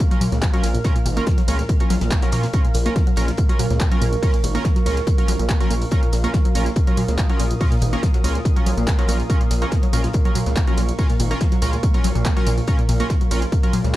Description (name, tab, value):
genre	driving peak-time techno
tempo	142 BPM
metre	4/4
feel	straight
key	Bb minor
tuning	A4 = 439 Hz
part	wide unison pluck	riff	0.0-13.9 s	Bb2 to Bb3	-25 LUFS	equal	sidechain pumping, digital delay
part	damped 70s drum kit	drums	0.0-14.0 s	hi-hat, snare drum	-40 LUFS	left 2 dB	none
part	electronic kick drum	drums	0.0-13.6 s	none	-18 LUFS	equal	studio reverb
part	punchy analog drum machine	drums	0.0-13.9 s	handclaps, hi-hat, ride cymbal, tambourine	-30 LUFS	right 1 dB	overdrive, studio reverb
part	warbly tape-like pad	texture	0.0-14.0 s	Bb4 to F6	-31 LUFS	right 4 dB	chorus, built-in reverb, sidechain pumping
part	sync-sweep polysynth	stabs	0.1-13.8 s	Db4 to Bb4	-29 LUFS	right 1 dB	analog chorus, sidechain pumping, digital delay
part	gritty driven synth bass	bass	0.2-14.0 s	Ab1 to Bb2	-22 LUFS	equal	distortion, sidechain pumping
room	little or no reverb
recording	dark, warm production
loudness	-17 LUFS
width	side -16 dB against mid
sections	0.0-14.0 A section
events	none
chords	0.0 Bbm